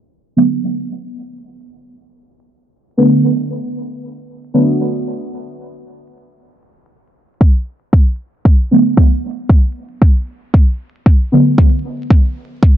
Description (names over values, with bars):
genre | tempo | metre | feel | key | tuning
dub techno | 115 BPM | 4/4 | straight | B minor | A4 = 439 Hz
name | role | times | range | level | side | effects
deep mellow chord stab | stabs | 0.4-4.9, 8.7-11.6 s | D3 to B3 | -14 LUFS | right 1 dB | chorus, phaser, vintage 12-bit sampler grit, sidechain pumping, dub echo
electronic kick drum | drums | 7.4-12.7 s | none | -9 LUFS | equal | none
room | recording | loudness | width
light reverb | echo-heavy mix, vinyl crackle, low-pass filter | -12 LUFS | side -12 dB against mid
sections
0.0-12.8 A section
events
filter sweep on synth stab 0.0-12.8; filter sweep 0.0-12.8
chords
0.0 Bm7